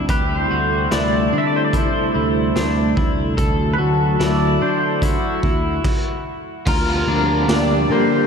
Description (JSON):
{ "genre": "dream pop", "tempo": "73 BPM", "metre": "4/4", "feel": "straight", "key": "D mixolydian", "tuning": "A4 = 440 Hz", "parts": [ { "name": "phased analog pad", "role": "sustained chords", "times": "0.0-8.3 s", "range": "C3 to A4", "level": "-22 LUFS", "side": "equal", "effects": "phaser, chorus" }, { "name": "electric guitar at the edge of break-up", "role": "arpeggios", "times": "0.0-8.3 s", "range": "Bb3 to A4", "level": "-23 LUFS", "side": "left 3 dB", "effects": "wide subtle chorus, ping-pong delay" }, { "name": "picked electric bass", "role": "bass", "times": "0.0-8.3 s", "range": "D2 to D3", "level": "-23 LUFS", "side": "equal", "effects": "none" }, { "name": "pedal steel guitar", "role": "melody", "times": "0.1-8.3 s", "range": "F#4 to E5", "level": "-23 LUFS", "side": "right 1 dB", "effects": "lush chorus, ping-pong delay" }, { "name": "raw garage drum kit", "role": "drums", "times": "0.1-7.7 s", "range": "crash cymbal, hi-hat, kick drum, ride cymbal, snare drum, tambourine", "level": "-23 LUFS", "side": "equal", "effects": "none" }, { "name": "crunchy overdriven guitar", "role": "accompaniment", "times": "6.7-8.3 s", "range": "D3 to Bb4", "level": "-24 LUFS", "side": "right 3 dB", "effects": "tremolo, wide subtle chorus" } ], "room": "wet lush hall reverb, RT60 3.2 s", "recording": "dreamy mix soaked in reverb", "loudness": "-16 LUFS", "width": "side -6 dB against mid", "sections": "0.0-6.7 A section; 6.7-8.3 B section", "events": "stop 5.8-6.7", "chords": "0.1 Am7/D; 3.4 D; 6.7 Bb69/D" }